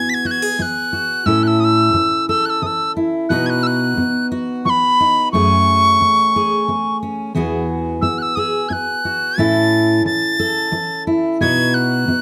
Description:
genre	acoustic folk duo or small band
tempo	89 BPM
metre	3/4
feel	straight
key	E major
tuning	A4 = 442 Hz
part	bright reedy tin whistle	melody	0.0-12.2 s	B5 to B6	-19 LUFS	equal	none
part	fingerpicked steel-string acoustic guitar	accompaniment	0.0-12.2 s	E2 to A4	-20 LUFS	equal	none
room	light reverb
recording	close, detailed microphones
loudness	-17 LUFS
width	mono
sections	0.0-12.2 A section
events	none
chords	0.0 Eadd9 (rootless); 1.3 A; 3.3 B; 5.3 F#madd9; 7.3 Eadd9; 9.4 A; 11.4 B

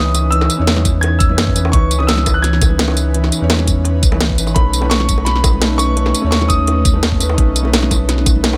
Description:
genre	liquid drum and bass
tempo	170 BPM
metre	4/4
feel	straight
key	C# minor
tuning	A4 = 440 Hz
part	bright grand piano	melody	0.0-8.6 s	B5 to G#6	-24 LUFS	equal	delay
part	felt-muted upright piano	accompaniment	0.0-8.6 s	E3 to C#5	-24 LUFS	equal	tape echo
part	airy breathy pad	sustained chords	0.0-8.6 s	E3 to B4	-27 LUFS	equal	chorus, sidechain pumping
part	warm sub bass	bass	0.0-8.6 s	G#1 to F#2	-19 LUFS	equal	tube saturation
part	drum and bass drum kit	drums	0.1-8.5 s	hi-hat, snare drum, tambourine	-20 LUFS	equal	none
part	bongos and congas	percussion	0.1-8.6 s	none	-29 LUFS	equal	none
part	electronic kick drum	drums	0.9-8.3 s	none	-18 LUFS	equal	none
room	little or no reverb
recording	none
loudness	-14 LUFS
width	mono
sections	0.0-8.6 A section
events	none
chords	0.0 C#m9; 4.6 B9

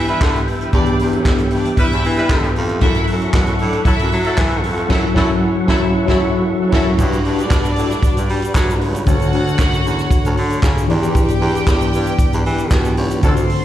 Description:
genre	disco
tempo	115 BPM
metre	4/4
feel	straight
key	E dorian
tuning	A4 = 438 Hz
part	clear studio violin section	second line	0.0-13.6 s	C#4 to C6	-26 LUFS	equal	slapback echo
part	mellow tine electric piano	accompaniment	0.0-13.6 s	D3 to D5	-20 LUFS	left 2 dB	medium stereo tremolo, slapback echo
part	tonewheel organ	sustained chords	0.0-13.6 s	D3 to C#6	-25 LUFS	right 1 dB	chorus vibrato, slow rotary speaker
part	warm baritone saxophone	bass	0.0-13.4 s	C#2 to G3	-22 LUFS	equal	none
part	clear horn section	stabs	0.1-6.9, 13.2-13.3 s	F#3 to B4	-25 LUFS	equal	tape echo, slapback echo
part	vintage drum kit	drums	0.1-13.6 s	crash cymbal, handclaps, hi-hat, kick drum, snare drum	-17 LUFS	equal	none
part	tube shaker	percussion	7.0-13.5 s	none	-40 LUFS	right 3 dB	none
room	light reverb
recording	live gig heard through the venue's PA, recital hall reverb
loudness	-14 LUFS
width	side -12 dB against mid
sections	0.0-7.0 A section; 7.0-13.6 B section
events	band accent 4.9-7.0, 13.2-13.6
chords	0.0 Em7; 2.8 F#m7; 7.0 Gmaj7; 9.1 Dmaj7; 10.9 Em7

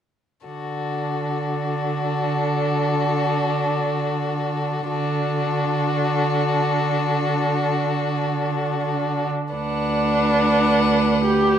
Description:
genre	classical, slow romantic movement for string quartet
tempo	44-57 BPM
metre	4/4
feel	rubato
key	D major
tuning	A4 = 440 Hz
part	warm violin	melody	0.5-11.6 s	A4 to F#5	-27 LUFS	left 9 dB	none
part	warm violin	second line	0.5-11.6 s	F#4 to B4	-27 LUFS	left 5 dB	none
part	warm viola	accompaniment	0.5-11.6 s	D4 to G4	-24 LUFS	right 1 dB	none
part	dark cello	bass	0.5-11.6 s	D2 to D3	-24 LUFS	right 5 dB	none
room	wet recital hall reverb, RT60 1.5 s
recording	dark, warm production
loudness	-19 LUFS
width	side -9 dB against mid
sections	0.5-9.6 A section; 9.6-11.6 B section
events	none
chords	0.5 D

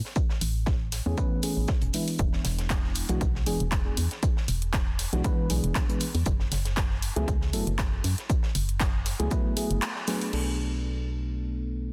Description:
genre	deep house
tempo	118 BPM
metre	4/4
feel	swing 54% on 16ths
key	unclear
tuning	A4 = 441 Hz
part	deep reggae drum kit	drums	0.0-10.3 s	hi-hat, shaker, snare drum	-45 LUFS	equal	high-pass filter on hats, high-pass filter on snare, high-pass filter on perc, high-pass filter on room
part	electronic kick drum	drums	0.2-9.4 s	none	-30 LUFS	equal	none
part	organ-like FM bass	bass	0.4-11.9 s	E1 to F#2	-31 LUFS	equal	tube saturation
part	punchy analog drum machine	drums	0.4-10.4 s	crash cymbal, handclaps, hi-hat	-36 LUFS	equal	none
part	mellow FM electric piano	stabs	1.1-11.9 s	E3 to B4	-34 LUFS	equal	chorus, cassette tape, sidechain pumping, digital delay
room	light reverb, studio reverb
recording	dense, heavily limited modern master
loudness	-28 LUFS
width	mono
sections	0.0-10.3 A section; 10.3-11.9 B section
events	kick drops out 9.8-10.3; band accent 9.8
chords	0.0 Amaj9; 2.2 E7; 6.3 F#m11; 10.3 Bm7

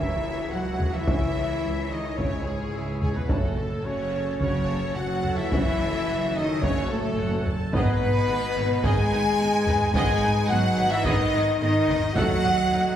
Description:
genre	cinematic, epic orchestral film score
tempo	108 BPM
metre	4/4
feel	straight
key	C# minor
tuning	A4 = 440 Hz
part	rich symphonic violin section	melody	0.0-13.0 s	G#4 to G#5	-36 LUFS	left 2 dB	none
part	mellow hollow silver concert flute	second line	0.0-13.0 s	G#4 to G#5	-33 LUFS	equal	none
part	warm symphonic violin section	second line	0.0-13.0 s	G#4 to G#5	-34 LUFS	left 2 dB	none
part	clear symphonic viola section	accompaniment	0.0-12.8 s	B3 to A5	-36 LUFS	right 1 dB	none
part	bright trombone section	sustained chords	0.0-12.4 s	C#3 to C#4	-36 LUFS	right 3 dB	none
part	mellow French horn section	sustained chords	0.0-13.0 s	G#3 to G#4	-29 LUFS	left 3 dB	none
part	warm woodwind section	sustained chords	0.0-13.0 s	A3 to D#5	-36 LUFS	equal	none
part	bright trumpet section	stabs	0.0-13.0 s	G#4 to G#5	-32 LUFS	right 1 dB	none
part	clear symphonic double bass section	bass	0.0-12.8 s	F#1 to D#2	-29 LUFS	right 1 dB	none
part	rich symphonic cello section	bass	0.0-13.0 s	G#2 to G#3	-30 LUFS	right 1 dB	none
part	impact	sound effects	0.0-1.1 s	none	barely audible	none	none
part	taiko ensemble	drums	0.8-12.7 s	none	-28 LUFS	equal	none
room	wet recital hall reverb, RT60 1.5 s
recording	heard from further back in the room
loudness	-22 LUFS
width	side -10 dB against mid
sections	0.0-13.0 A section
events	impact 0.0-1.1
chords	0.0 C#m; 3.3 F#m; 7.7 G#m; 12.2 D#dim

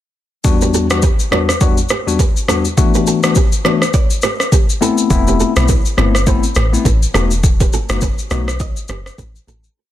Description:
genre	afrobeats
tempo	103 BPM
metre	4/4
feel	swing 58% on 16ths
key	E minor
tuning	A4 = 440 Hz
part	tine electric piano	accompaniment	0.4-8.5 s	E2 to F#4	-17 LUFS	left 5 dB	none
part	afro-pop drum kit	drums	0.4-9.8 s	kick drum, rim click, shaker	-14 LUFS	equal	overdrive, soft clipping on snare
part	flamenco guitar	riff	0.6-9.6 s	E4 to D#5	-23 LUFS	right 8 dB	digital delay
part	deep log drum bass	bass	5.1-9.7 s	E1 to B1	-16 LUFS	equal	none
room	little or no reverb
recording	dense, heavily limited modern master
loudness	-12 LUFS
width	side -12 dB against mid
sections	0.4-9.8 verse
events	fade-out 7.4-9.8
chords	0.4 Em7; 4.8 Amadd9/E; 7.1 B7/E

